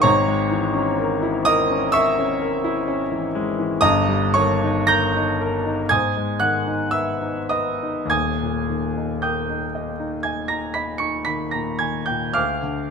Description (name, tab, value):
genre	classical, romantic nocturne for solo piano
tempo	48-64 BPM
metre	4/4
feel	rubato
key	unclear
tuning	A4 = 436 Hz
part	clear grand piano	solo	0.0-12.9 s	D#1 to C#7	-19 LUFS	equal	none
room	moderate recital hall reverb, RT60 1.5 s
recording	close, detailed microphones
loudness	-19 LUFS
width	side -5 dB against mid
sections	0.0-12.9 A section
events	none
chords	0.0 A#m7b5/G#; 3.8 D#/G; 5.9 G#m; 8.1 D#; 12.4 A#/D (rootless)